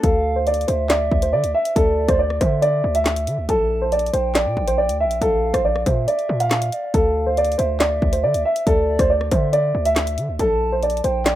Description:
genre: hip hop, drill.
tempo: 139 BPM.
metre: 4/4.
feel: half-time.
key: D minor.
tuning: A4 = 441 Hz.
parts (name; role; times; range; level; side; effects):
dark baby grand piano; melody; 0.0-11.4 s; A4 to F5; -19 LUFS; right 1 dB; none.
gliding portamento lead; second line; 0.0-11.4 s; D5 to A5; -28 LUFS; right 2 dB; chorus, ping-pong delay.
hard-hitting 808-style bass; bass; 0.0-11.4 s; Bb1 to D3; -23 LUFS; equal; none.
drill drum kit; drums; 0.0-11.4 s; handclaps, hi-hat, kick drum, rim click, snare drum; -23 LUFS; equal; none.
room: little or no reverb.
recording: rough home demo mix.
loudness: -17 LUFS.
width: side -13 dB against mid.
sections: 0.0-11.4 A section.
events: none.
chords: 0.0 Dsus2; 3.5 Bbmaj7; 6.9 Dsus2; 10.4 Bbmaj7.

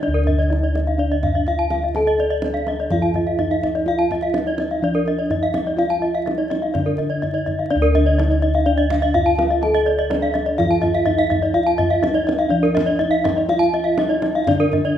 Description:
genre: Balinese gamelan.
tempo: 125 BPM.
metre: 4/4.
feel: straight.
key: D pelog.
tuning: A4 = 439 Hz.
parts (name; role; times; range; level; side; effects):
gamelan-type bronze metallophone; melody; 0.0-15.0 s; D4 to A4-30c; -22 LUFS; right 2 dB; none.
gamelan-type bronze metallophone; arpeggios; 0.0-14.9 s; D5 to A5-30c; -22 LUFS; left 4 dB; none.
gamelan-type bossed gongs; bass; 0.0-15.0 s; D2 to A4-30c; -22 LUFS; equal; none.
gamelan-type bronze metallophone; arpeggios; 0.1-15.0 s; Bb4-20c to A5-30c; -25 LUFS; right 5 dB; none.
kendang; percussion; 0.2-14.8 s; none; -28 LUFS; equal; none.
room: moderate recital hall reverb, RT60 1.6 s.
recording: minimal, uncompressed stereo recording, vinyl crackle.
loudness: -16 LUFS.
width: side -10 dB against mid.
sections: 0.0-15.0 A section.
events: none.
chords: none.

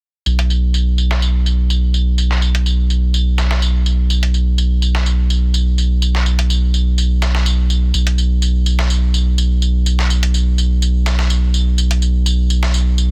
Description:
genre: progressive house.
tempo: 125 BPM.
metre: 4/4.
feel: straight.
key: unclear.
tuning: A4 = 439 Hz.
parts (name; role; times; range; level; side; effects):
saturated sub bass; bass; 0.3-13.1 s; B1; -16 LUFS; equal; tube saturation.
dusty soul sampler-style drum kit; drums; 0.3-13.1 s; hi-hat, snare drum, tambourine; -25 LUFS; equal; high-pass filter on perc, low-pass filter on perc, high-pass filter on hats, low-pass filter on hats, high-pass filter on snare, low-pass filter on snare.
room: little or no reverb.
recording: dense, heavily limited modern master.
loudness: -16 LUFS.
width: mono.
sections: 0.3-13.1 A section.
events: none.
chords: none.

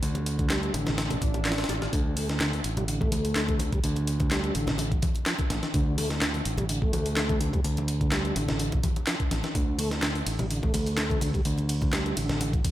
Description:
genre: breakbeat, breaks.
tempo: 126 BPM.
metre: 4/4.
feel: swing 53% on 16ths.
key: unclear.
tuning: A4 = 436 Hz.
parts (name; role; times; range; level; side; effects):
tonewheel organ; riff; 0.0-12.5 s; D3 to A3; -31 LUFS; equal; chorus vibrato, slow rotary speaker, ping-pong delay.
modern bright fingered electric bass; bass; 0.0-12.6 s; A1 to D2; -30 LUFS; equal; none.
breakbeat sampler-style drum kit; drums; 0.0-12.7 s; hi-hat, kick drum, snare drum; -28 LUFS; equal; none.
punchy analog drum machine; drums; 0.0-12.7 s; handclaps, hi-hat, ride cymbal; -35 LUFS; right 1 dB; none.
congas; percussion; 0.1-12.7 s; none; -36 LUFS; left 2 dB; none.
swell; sound effects; 1.1-1.9 s; none; -38 LUFS; right 1 dB; none.
room: digital ambience.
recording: none.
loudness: -24 LUFS.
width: side -14 dB against mid.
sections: 0.0-12.7 A section.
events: swell 1.1-1.9.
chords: 0.0 D5.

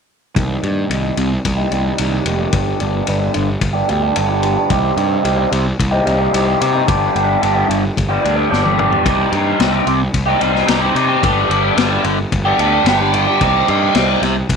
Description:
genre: psychedelic rock.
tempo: 110 BPM.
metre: 4/4.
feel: straight.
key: unclear.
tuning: A4 = 440 Hz.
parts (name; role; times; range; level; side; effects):
biting overdriven guitar; riff; 0.4-14.4 s; G2 to G4; -16 LUFS; equal; flanger, low-pass filter.
fuzz picked electric bass; bass; 0.4-14.6 s; F1 to C3; -19 LUFS; right 1 dB; overdrive.
vintage drum kit; drums; 0.4-14.6 s; kick drum, ride cymbal, snare drum, toms; -22 LUFS; left 4 dB; none.
room: light reverb, small room ambience.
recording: 1960s-style stereo.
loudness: -13 LUFS.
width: side -6 dB against mid.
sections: 0.4-14.6 A section.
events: filter sweep on overdriven electric guitar 0.4-14.6; drum fill 8.5-9.1.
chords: 0.4 Cm; 2.5 G; 4.7 Cm; 6.9 G; 9.1 Cm; 11.2 G; 13.4 Cm.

